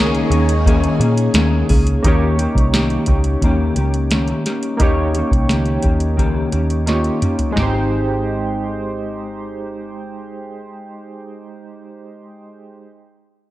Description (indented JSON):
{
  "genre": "indie pop, bedroom pop",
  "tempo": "87 BPM",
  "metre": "4/4",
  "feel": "straight",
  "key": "Ab major",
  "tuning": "A4 = 440 Hz",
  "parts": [
    { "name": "chorused retro synth keys", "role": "accompaniment", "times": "0.0-12.9 s", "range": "Ab3 to Db5", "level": "-23 LUFS", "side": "right 2 dB", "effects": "tremolo, cassette tape" },
    { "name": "mellow electric guitar", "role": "accompaniment", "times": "0.0-11.9 s", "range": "Eb3 to Ab4", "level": "-21 LUFS", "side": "left 3 dB", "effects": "analog chorus, vibrato effect" },
    { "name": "phased string machine", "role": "sustained chords", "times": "0.0-2.0 s", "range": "Eb3 to Ab4", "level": "-26 LUFS", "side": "equal", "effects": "ensemble chorus, phaser" },
    { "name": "vintage muted picked electric bass", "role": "bass", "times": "0.0-11.8 s", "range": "Ab1 to Bb2", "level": "-19 LUFS", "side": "equal", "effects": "none" },
    { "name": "soft vintage rhythm box", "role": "drums", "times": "0.1-7.7 s", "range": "hi-hat, kick drum, snare drum, toms", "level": "-18 LUFS", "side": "equal", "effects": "none" }
  ],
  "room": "light reverb, digital ambience",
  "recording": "dark, warm production",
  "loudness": "-14 LUFS",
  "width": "side -15 dB against mid",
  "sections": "0.0-2.0 A section; 2.0-7.6 B section; 7.6-10.3 C section",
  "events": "drum fill 6.9-7.6",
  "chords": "0.0 Eb7sus4; 2.0 Eb7; 7.6 Abmaj7"
}